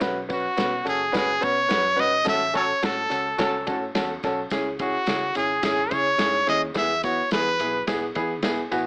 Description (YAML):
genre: uptempo 1960s-style soul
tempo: 107 BPM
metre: 4/4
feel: straight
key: E major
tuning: A4 = 440 Hz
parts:
  - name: clear grand piano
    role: accompaniment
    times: 0.0-8.9 s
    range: B3 to B5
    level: -29 LUFS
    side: equal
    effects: none
  - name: vintage muted fingered electric bass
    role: bass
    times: 0.0-8.9 s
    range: F#1 to E3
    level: -42 LUFS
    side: equal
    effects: none
  - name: warm soul drum kit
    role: drums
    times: 0.0-8.8 s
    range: kick drum, ride cymbal, snare drum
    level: -33 LUFS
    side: equal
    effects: none
  - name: tambourine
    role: percussion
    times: 0.0-8.9 s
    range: none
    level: -45 LUFS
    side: equal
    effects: none
  - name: brilliant trumpet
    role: melody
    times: 0.3-7.8 s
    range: F#4 to E5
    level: -25 LUFS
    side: equal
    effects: none
  - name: warm horn section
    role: second line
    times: 2.5-3.8 s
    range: F#3 to A4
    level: -30 LUFS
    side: equal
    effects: none
room: light reverb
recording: AM radio sound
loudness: -24 LUFS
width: mono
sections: 0.0-8.9 A section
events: band accent 2.3-4.5; grand piano fill 7.9-8.9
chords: 0.0 Bsus2; 2.3 F#m/A; 4.5 C#m; 6.8 E